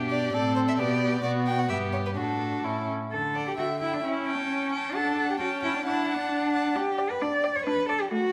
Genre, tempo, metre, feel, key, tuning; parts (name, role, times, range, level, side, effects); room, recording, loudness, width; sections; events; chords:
quick classical-period movement for string quartet; 132 BPM; 2/4; straight; D major; A4 = 440 Hz
warm violin; second line; 0.0-8.1 s; E4 to G5; -34 LUFS; equal
rich viola; accompaniment; 0.0-8.3 s; D3 to D4; -33 LUFS; equal
rich cello; bass; 0.0-8.3 s; G2 to D5; -31 LUFS; equal
warm violin; melody; 0.1-8.1 s; A4 to A5; -36 LUFS; equal
moderate scoring stage reverb, RT60 1.5 s; -27 LUFS; mono
0.0-3.1 A section; 3.1-8.3 B section
0.3 D5/A; 0.8 G/B; 1.7 Em/G (rootless); 2.2 D/A; 2.6 A; 3.1 D; 3.6 Em7/D; 4.0 A7/C#; 5.0 D; 5.4 A7/C#; 5.9 D; 6.8 G/D; 7.7 D